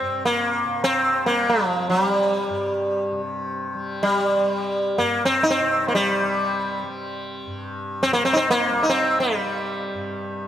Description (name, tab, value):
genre	indian classical, Hindustani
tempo	free time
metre	none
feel	none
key	unclear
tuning	A4 = 440 Hz
part	sitar	melody	0.0-10.5 s	F3 to Eb4	-20 LUFS	equal	none
part	tanpura	drone	0.0-10.5 s	G2 to G3	-31 LUFS	left 1 dB	none
room	moderate concert hall reverb, RT60 2.1 s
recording	none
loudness	-19 LUFS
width	side -10 dB against mid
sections	0.0-10.5 A section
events	none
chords	none